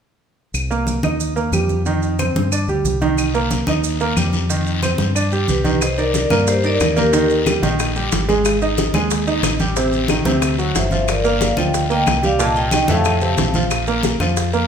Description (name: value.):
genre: latin, salsa.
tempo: 182 BPM.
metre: 4/4.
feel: straight.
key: C minor.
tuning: A4 = 439 Hz.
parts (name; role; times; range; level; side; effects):
deep dub fingered electric bass; bass; 0.5-14.7 s; G1 to G2; -21 LUFS; left 1 dB; none.
claves; percussion; 0.5-14.4 s; none; -30 LUFS; left 7 dB; none.
congas; percussion; 0.5-14.7 s; none; -25 LUFS; left 1 dB; none.
maracas; percussion; 0.5-14.7 s; none; -30 LUFS; right 7 dB; none.
clear upright piano; accompaniment; 0.7-14.7 s; A2 to Eb5; -20 LUFS; right 4 dB; none.
guiro; percussion; 3.2-14.7 s; none; -27 LUFS; left 5 dB; none.
vibraphone with medium hard mallets; melody; 5.5-7.4, 10.8-13.5 s; G4 to A5; -20 LUFS; left 2 dB; none.
bongos; percussion; 5.8-14.7 s; none; -27 LUFS; left 6 dB; none.
room: moderate large studio reverb, RT60 1.3 s.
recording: minimal, uncompressed stereo recording.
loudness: -15 LUFS.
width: side -7 dB against mid.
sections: 0.5-5.8 A section; 5.8-14.7 B section.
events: none.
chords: 0.5 Cm7; 1.2 Eb; 1.9 F5; 2.5 G5; 3.2 Cm7; 3.8 Eb; 4.5 F5; 5.2 G; 5.8 Cm9; 7.1 Eb; 8.4 Ab5; 9.8 Adim; 10.4 D7; 11.1 Gm7; 12.4 Cm7; 13.1 F; 13.7 Bb5.